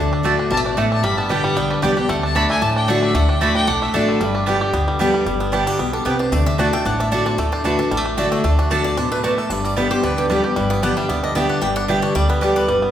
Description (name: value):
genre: bluegrass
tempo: 226 BPM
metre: 4/4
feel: swing 53% on 8ths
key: G major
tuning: A4 = 440 Hz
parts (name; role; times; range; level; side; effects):
- bluegrass banjo; melody; 0.0-12.9 s; D3 to G4; -23 LUFS; right 2 dB; none
- picked steel-string acoustic guitar; accompaniment; 0.0-12.9 s; G2 to G4; -20 LUFS; left 1 dB; none
- upright bass; bass; 0.0-12.9 s; G1 to D2; -25 LUFS; equal; none
- mandolin; stabs; 0.2-12.5 s; A3 to A5; -26 LUFS; right 4 dB; none
- rich fiddle; second line; 0.5-4.7 s; B4 to B5; -24 LUFS; left 2 dB; none
- picked swing-style acoustic guitar; melody; 5.4-12.9 s; D4 to G5; -24 LUFS; equal; none
room: wet recital hall reverb, RT60 1.4 s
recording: recorded in a church or concert hall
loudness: -16 LUFS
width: side -10 dB against mid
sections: 0.0-5.3 A section; 5.3-12.9 B section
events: fiddle solo 0.0-5.3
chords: 0.0 D; 1.0 G; 2.1 D; 4.2 G; 6.3 D; 9.5 G